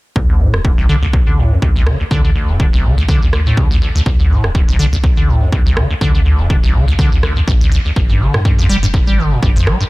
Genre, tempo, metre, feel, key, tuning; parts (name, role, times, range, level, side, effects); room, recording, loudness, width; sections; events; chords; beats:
acid house; 123 BPM; 4/4; swing 55% on 16ths; D minor; A4 = 440 Hz
acid bass, square; riff; 0.2-9.8 s; C2 to G3; -15 LUFS; equal; tube saturation, lush chorus, cassette tape, sidechain pumping, dub echo
warm sub bass; bass; 0.2-9.7 s; D1 to G2; -16 LUFS; equal; sidechain pumping
electronic kick drum; drums; 0.2-9.5 s; -14 LUFS; equal
electronic rim click; drums; 0.5-9.8 s; -23 LUFS; right 1 dB
little or no reverb; echo-heavy mix; -11 LUFS; side -21 dB against mid
0.2-9.9 A section
0.2 D7(no3); 8.0 G7(no3)
| 0.16 0.65 1.13 1.62 | 2.11 2.60 3.08 3.57 | 4.06 4.55 5.04 5.52 | 6.01 6.50 6.99 7.48 | 7.96 8.45 8.94 9.43